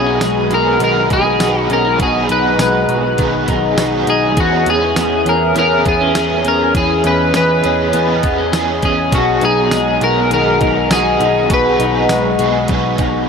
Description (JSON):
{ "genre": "dream pop", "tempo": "101 BPM", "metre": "4/4", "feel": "straight", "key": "B major", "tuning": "A4 = 440 Hz", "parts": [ { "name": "electric guitar at the edge of break-up", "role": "melody", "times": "0.0-13.3 s", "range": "F#4 to B4", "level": "-16 LUFS", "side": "left 1 dB", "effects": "analog chorus, ping-pong delay" }, { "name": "overdriven semi-hollow guitar", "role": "accompaniment", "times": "0.0-13.3 s", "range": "B2 to G#4", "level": "-20 LUFS", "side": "right 5 dB", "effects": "tremolo, ensemble chorus" }, { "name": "warbly tape-like pad", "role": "sustained chords", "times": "0.0-13.3 s", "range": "G#4 to C#6", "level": "-20 LUFS", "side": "equal", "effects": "chorus, built-in reverb" }, { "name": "clean electric guitar", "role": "arpeggios", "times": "0.0-13.3 s", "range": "B2 to G#4", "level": "-18 LUFS", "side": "left 5 dB", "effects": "lush chorus, ping-pong delay" }, { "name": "vintage muted picked electric bass", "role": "bass", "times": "0.0-13.2 s", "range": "B1 to E2", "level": "-22 LUFS", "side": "right 1 dB", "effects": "none" }, { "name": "detuned 8-bit digital drum machine", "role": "drums", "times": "0.2-13.1 s", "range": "hi-hat, kick drum, snare drum, tambourine", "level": "-19 LUFS", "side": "right 1 dB", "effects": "none" } ], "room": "light reverb", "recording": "none", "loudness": "-12 LUFS", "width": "side -6 dB against mid", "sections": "0.0-13.3 A section", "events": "none", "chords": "0.0 B6; 4.4 E6; 9.1 B6", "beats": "0.21 0.81 1.40 | 2.00 2.59 3.19 3.78 | 4.37 4.97 5.56 6.16 | 6.75 7.34 7.94 8.53 | 9.13 9.72 10.31 10.91 | 11.50 12.10 12.69 13.28" }